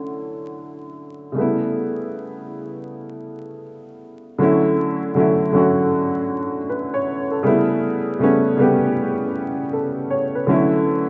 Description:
hip hop; 79 BPM; 4/4; swing 64% on 16ths; D major; A4 = 440 Hz
warm upright piano; solo; 0.0-11.1 s; C#3 to C#5; -21 LUFS; equal; cassette tape, low-pass filter
wet plate reverb, RT60 3.3 s; rough home demo mix, vinyl crackle, nothing above 8.0 kHz; -20 LUFS; mono
0.0-4.4 A section; 4.4-11.1 B section
0.0 Dmaj9; 1.4 A9; 4.4 Dmaj9; 7.4 A9; 10.5 Dmaj9
0.60 | 1.36 2.12 2.88 3.64 | 4.40 5.16 5.92 6.68 | 7.44 8.20 8.96 9.72 | 10.48

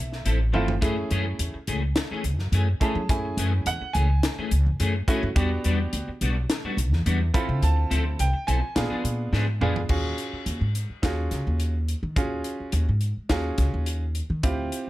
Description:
electric jazz fusion; 106 BPM; 4/4; straight; Eb dorian from 9.9 s; A4 = 442 Hz
clear grand piano; accompaniment; 0.0-14.9 s; A3 to B5; -29 LUFS; right 2 dB
upright bass; bass; 0.0-14.9 s; G1 to F#3; -24 LUFS; equal
crisp fusion drum kit; drums; 0.1-14.9 s; crash cymbal, hi-hat, kick drum, snare drum, toms; -28 LUFS; equal
clean electric guitar; stabs; 0.2-9.8 s; E3 to A4; -31 LUFS; left 3 dB; ensemble chorus
little or no reverb; -22 LUFS; side -16 dB against mid
0.0-9.9 A section; 9.9-14.9 B section
drum fill 0.5, 9.3-9.9
0.0 Dm9 (rootless); 0.8 F#m9; 5.4 Em9; 7.3 Dm9; 8.8 A#7b9; 9.9 Ebm11
0.26 | 0.83 1.39 1.96 2.53 | 3.10 3.66 4.23 4.80 | 5.36 5.93 6.50 7.06 | 7.63 8.20 8.77 9.33 | 9.90 10.47 11.03 11.60 | 12.17 12.73 13.30 13.87 | 14.44

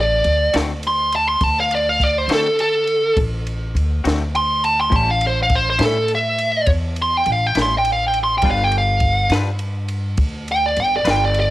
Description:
slow blues; 68 BPM (dotted quarters); 12/8; straight; A4 = 444 Hz
smooth overdriven lead guitar; melody; 0.0-11.5 s; A4 to C6; -17 LUFS; equal; cassette tape
upright bass; bass; 0.0-11.5 s; G1 to D3; -22 LUFS; equal
compact cocktail drum kit; drums; 0.2-11.5 s; kick drum, ride cymbal, snare drum; -24 LUFS; equal; cassette tape
semi-hollow electric guitar; accompaniment; 0.5-11.2 s; A2 to B4; -27 LUFS; left 5 dB; harmonic tremolo, cassette tape
light reverb, small room reverb; home recording on cassette; -16 LUFS; side -15 dB against mid
0.0-11.5 A section
lead electric guitar solo 0.0-11.5
0.0 D5; 4.9 A7; 8.4 G7
0.54 | 1.42 2.29 3.17 4.04 | 4.92 5.80 6.67 7.55 | 8.43 9.31 10.18 11.06

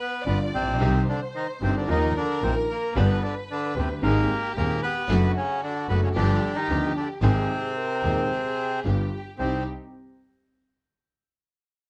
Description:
tango; 112 BPM; 4/4; rubato; C minor; A4 = 438 Hz
bandoneon; melody; 0.0-9.6 s; C3 to B4; -30 LUFS; equal
dark chamber violin section; second line; 0.0-9.6 s; F#4 to D5; -36 LUFS; equal
clear concert grand piano; accompaniment; 0.3-9.6 s; Eb1 to A4; -30 LUFS; equal
clear studio string section; stabs; 0.3-9.6 s; F3 to Ab4; -39 LUFS; equal
clear double bass; bass; 0.3-9.6 s; F#1 to Eb2; -28 LUFS; equal
moderate club reverb, RT60 0.7 s; dark, warm production; -25 LUFS; mono
0.0-9.4 A section; 9.4-11.5 B section
0.0 G7; 0.8 Cm; 1.9 Ebsus2; 2.9 G; 4.0 Ab; 5.1 D/F#; 6.2 G7; 7.2 Ab; 8.8 G7; 9.4 Cm
0.25 | 0.79 1.33 1.87 2.41 | 2.95 3.48 4.02 4.55 | 5.08 5.62 6.15 6.69 | 7.22 7.76 8.29 8.84 | 9.38

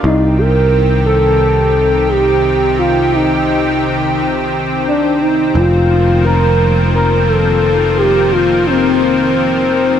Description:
synthwave; 87 BPM; 4/4; straight; A4 = 440 Hz
expressive synth lead; melody; 0.0-10.0 s; C4 to Bb4; -14 LUFS; equal; chorus, digital delay
lush unison pad; sustained chords; 0.0-10.0 s; C3 to G4; -16 LUFS; left 2 dB; chorus
picked electric bass; bass; 0.0-10.0 s; F1 to C2; -16 LUFS; equal; tube saturation
light reverb, digital ambience; -10 LUFS; side -9 dB against mid
0.0-10.0 A section
0.0 Cm; 5.6 F7sus4
| 0.04 0.73 1.42 2.10 | 2.79 3.48 4.17 4.86 | 5.55 6.24 6.93 7.62 | 8.31 9.00 9.69

